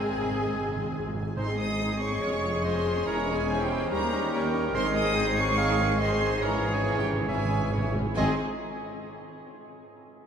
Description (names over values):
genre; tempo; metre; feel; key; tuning
classical, dramatic, fast romantic movement for symphony orchestra; 142 BPM; 4/4; rubato; Ab major; A4 = 443 Hz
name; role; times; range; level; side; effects
warm symphonic violin section; melody; 0.0-8.4 s; G5 to Eb6; -35 LUFS; equal; none
bright clarinet; second line; 0.0-8.3 s; C4 to F5; -35 LUFS; right 4 dB; none
silver concert flute; second line; 0.0-8.4 s; Ab5 to C7; -36 LUFS; right 3 dB; none
warm cor anglais; second line; 0.0-8.4 s; G4 to Eb5; -37 LUFS; right 2 dB; none
warm symphonic violin section; second line; 0.0-8.4 s; C4 to Ab5; -39 LUFS; right 1 dB; none
clear symphonic viola section; accompaniment; 0.0-8.4 s; Eb3 to Ab4; -35 LUFS; left 1 dB; none
mellow bassoon; accompaniment; 0.0-8.3 s; Fb3 to C4; -36 LUFS; left 4 dB; none
mellow French horn section; sustained chords; 0.0-8.3 s; Eb3 to Ab4; -36 LUFS; left 1 dB; none
dark trumpet section; stabs; 0.0-8.3 s; G4 to Ab4; -35 LUFS; left 2 dB; none
rich symphonic double bass section; bass; 0.0-8.4 s; Fb1 to Eb2; -34 LUFS; equal; none
warm symphonic cello section; bass; 0.0-8.4 s; Eb2 to Ab3; -34 LUFS; equal; none
timpani; percussion; 0.0-2.0, 4.7-8.4 s; Ab2; -36 LUFS; right 2 dB; none
room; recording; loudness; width
wet cathedral reverb, RT60 5.6 s; in a vast, echoing space; -24 LUFS; side -7 dB against mid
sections
0.0-1.4 A section; 1.4-8.2 B section; 8.2-9.9 C section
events
timpani fill 0.0-1.4, 6.4-8.2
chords
0.0 Ab; 2.2 Db/F; 3.1 Dbm/Fb; 3.9 Eb7; 4.7 Ab; 6.4 Dbm/Ab; 8.2 Ab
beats
0.12 0.54 0.95 | 1.37 1.80 2.22 2.65 | 3.07 3.49 3.91 4.32 | 4.74 5.16 5.58 6.00 | 6.42 6.85 7.28 7.73 | 8.17